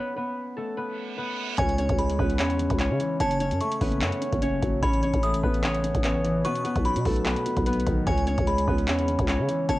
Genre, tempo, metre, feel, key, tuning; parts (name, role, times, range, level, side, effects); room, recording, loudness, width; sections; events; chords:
hip hop, trap; 148 BPM; 4/4; half-time; A4 = 439 Hz
concert harp; melody; 0.0-9.8 s; A3 to C#5; -29 LUFS; equal; low-pass filter, cassette tape
reverse cymbal; sound effects; 0.9-1.6 s; -34 LUFS; right 6 dB
glassy synth bell; second line; 1.6-9.8 s; G#5 to D#6; -32 LUFS; left 1 dB; chorus, cassette tape
dark baby grand piano; accompaniment; 1.6-9.8 s; B2 to C#4; -30 LUFS; left 1 dB; low-pass filter, cassette tape
growling 808-style bass; bass; 1.6-9.8 s; F#1 to C#3; -27 LUFS; equal
booming analog drum machine; drums; 1.6-9.8 s; handclaps, hi-hat, kick drum; -28 LUFS; equal; cassette tape
little or no reverb; home recording on cassette; -23 LUFS; side -17 dB against mid
0.0-1.6 A section; 1.6-9.8 B section
break 0.0-1.6; reverse cymbal 0.9-1.6
0.0 Asus2; 1.6 C#m; 3.2 F#m; 4.8 Aadd9; 6.4 B; 8.1 C#m